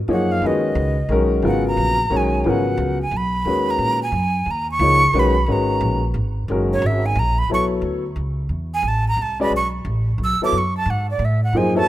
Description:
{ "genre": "modal jazz", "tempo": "178 BPM", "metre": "3/4", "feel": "swing 62% on 8ths", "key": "G# dorian, B dorian from 7.5 s", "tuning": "A4 = 439 Hz", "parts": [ { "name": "upright bass", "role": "bass", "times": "0.0-11.9 s", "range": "F#1 to A#2", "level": "-22 LUFS", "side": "equal", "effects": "none" }, { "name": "breathy bright jazz flute", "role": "melody", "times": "0.1-11.9 s", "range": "C#5 to E6", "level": "-21 LUFS", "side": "right 2 dB", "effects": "none" }, { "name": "clear upright piano", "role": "accompaniment", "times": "0.1-11.9 s", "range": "C#3 to D5", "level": "-21 LUFS", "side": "left 2 dB", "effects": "none" } ], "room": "light reverb, studio reverb", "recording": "rough home demo mix", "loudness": "-17 LUFS", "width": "side -14 dB against mid", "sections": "0.0-7.5 A section; 7.5-11.9 A section", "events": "flute solo 0.0-11.9", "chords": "0.0 G#m11; 6.5 F#69; 7.5 B9sus4" }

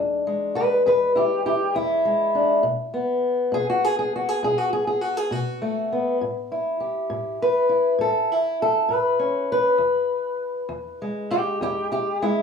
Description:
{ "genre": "acoustic country blues, solo or duo", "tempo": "67 BPM (dotted quarters)", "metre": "12/8", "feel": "straight", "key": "E mixolydian", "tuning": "A4 = 440 Hz", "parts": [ { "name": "fingerpicked old ladder-braced acoustic guitar", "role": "solo", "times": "0.0-12.4 s", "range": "E2 to B4", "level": "-20 LUFS", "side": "left 1 dB", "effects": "none" } ], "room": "moderate studio reverb, RT60 0.6 s", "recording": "small room reverb", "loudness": "-20 LUFS", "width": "side -6 dB against mid", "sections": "0.0-12.4 A section", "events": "none", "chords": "0.0 E7; 2.6 B5; 6.2 A7; 9.8 E" }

